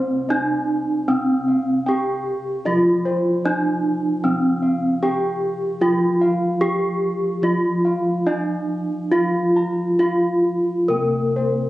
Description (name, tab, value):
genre	Javanese gamelan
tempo	64-76 BPM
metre	4/4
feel	straight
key	C slendro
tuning	A4 = 439 Hz
part	gamelan-type bronze metallophone	melody	0.0-11.7 s	C4 to Bb4-25c	-19 LUFS	equal	none
part	gamelan-type bronze metallophone	accompaniment	0.0-11.7 s	C3 to Bb3-25c	-28 LUFS	right 1 dB	none
part	gamelan-type bossed gongs	arpeggios	0.0-11.7 s	C5 to Bb5-25c	-29 LUFS	equal	none
part	gamelan-type bossed gongs	bass	0.0-11.7 s	C2 to F4	-26 LUFS	equal	none
room	light reverb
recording	recorded on a phone in the room, club reverb, compression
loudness	-18 LUFS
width	side -16 dB against mid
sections	0.0-11.7 A section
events	none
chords	none